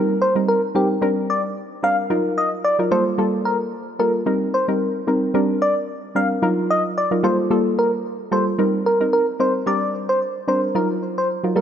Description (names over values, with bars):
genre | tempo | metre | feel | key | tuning
afrobeats | 111 BPM | 4/4 | swing 55% on 16ths | Bb major | A4 = 440 Hz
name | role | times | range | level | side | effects
soft round pluck | accompaniment | 0.0-11.6 s | Gb3 to Bb4 | -20 LUFS | equal | chorus
soft struck synth lead | melody | 0.2-11.6 s | G4 to F5 | -21 LUFS | equal | chorus
room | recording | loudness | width
moderate lush hall reverb, RT60 2.9 s | none | -18 LUFS | side -9 dB against mid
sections
0.0-9.7 A section; 9.7-11.6 B section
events
none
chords
0.0 Cm7; 1.0 Bb69; 2.1 Ebmadd9; 2.9 Gm9; 4.3 Cm7; 5.3 Bb69; 6.4 Ebmadd9; 7.2 Gm9; 8.6 Cm7; 9.7 Bb69; 10.7 Ebmadd9